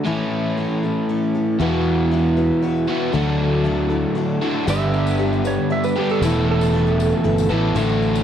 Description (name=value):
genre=folk rock and heartland rock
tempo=117 BPM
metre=3/4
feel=straight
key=unclear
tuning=A4 = 440 Hz
part: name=picked steel-string acoustic guitar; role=accompaniment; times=0.0-8.2 s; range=A2 to B4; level=-25 LUFS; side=left 7 dB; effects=none
part: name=crunchy overdriven guitar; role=riff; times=0.0-8.2 s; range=E2 to A4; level=-20 LUFS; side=right 1 dB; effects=none
part: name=dark grand piano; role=accompaniment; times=1.6-8.2 s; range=E4 to A5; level=-33 LUFS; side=left 8 dB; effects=none
part: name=fingered electric bass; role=bass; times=1.6-8.2 s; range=E1 to E2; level=-21 LUFS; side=equal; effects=none
part: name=clean lap steel guitar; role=second line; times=4.7-7.5 s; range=A4 to E5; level=-24 LUFS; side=right 8 dB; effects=none
part: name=tambourine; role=percussion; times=4.7-8.2 s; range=none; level=-40 LUFS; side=left 11 dB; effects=none
room=light reverb, studio reverb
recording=home recording on cassette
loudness=-17 LUFS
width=side -9 dB against mid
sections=0.0-1.6 A section; 1.6-7.8 B section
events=break 0.1-1.6; grand piano fill 3.7-4.7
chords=0.1 A; 1.6 Esus2; 3.1 Dadd9; 4.7 G; 6.2 Esus4